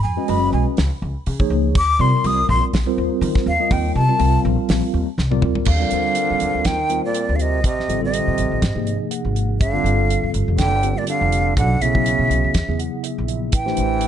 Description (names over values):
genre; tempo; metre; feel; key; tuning
electric jazz fusion; 122 BPM; 4/4; swing 55% on 16ths; Eb lydian; A4 = 436 Hz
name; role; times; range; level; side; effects
breathy jazz flute; melody; 0.0-14.1 s; D5 to Eb6; -21 LUFS; left 1 dB; tape echo
upright bass; bass; 0.0-14.1 s; F1 to Eb3; -21 LUFS; equal; none
mellow tine electric piano; accompaniment; 0.2-14.1 s; C3 to Gb5; -23 LUFS; equal; medium stereo tremolo, lush chorus
damped 70s drum kit; drums; 0.3-14.1 s; crash cymbal, hi-hat, kick drum, snare drum, toms; -22 LUFS; equal; none
clear trombone; second line; 5.7-14.1 s; Bb2 to E3; -26 LUFS; right 7 dB; none
room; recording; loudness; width
light reverb; dark, warm production, nothing above 10.8 kHz; -16 LUFS; side -9 dB against mid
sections
0.0-5.7 A section; 5.7-14.1 B section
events
flute solo 0.0-5.7; drum fill 5.2-5.7; tine electric piano fill 8.6-9.6, 12.5-13.5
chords
0.0 Abm7; 0.8 Dbadd9; 1.8 Eb6; 5.7 Ebmaj9; 7.6 Am7b5; 8.6 Ab9; 9.6 Gsus2; 11.6 Bm11; 12.5 E; 13.5 Am7